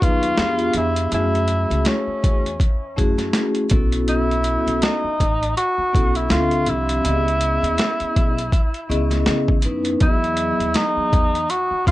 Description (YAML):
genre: hip hop, jazz-hop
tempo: 81 BPM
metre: 4/4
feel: swing 58% on 16ths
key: E major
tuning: A4 = 436 Hz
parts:
  - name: mellow tenor saxophone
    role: melody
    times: 0.0-11.9 s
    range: C#4 to F#4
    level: -22 LUFS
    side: equal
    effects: analog delay
  - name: vibraphone with soft mallets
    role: accompaniment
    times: 0.0-11.9 s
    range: F3 to E5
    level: -23 LUFS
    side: left 1 dB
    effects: none
  - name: upright bass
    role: bass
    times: 0.0-11.9 s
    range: A1 to C#3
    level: -24 LUFS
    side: equal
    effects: none
  - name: boom bap sampler-style drum kit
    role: drums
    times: 0.0-11.9 s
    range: hi-hat, kick drum, snare drum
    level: -20 LUFS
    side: equal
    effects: overdrive, vintage 12-bit sampler grit
room: light reverb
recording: none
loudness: -17 LUFS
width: side -16 dB against mid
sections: 0.0-10.0 A section; 10.0-11.9 A section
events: none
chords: 0.4 Fdim7; 1.1 F#m9; 3.7 B9sus4; 6.3 Dm9; 7.0 C#m9; 10.0 Emaj7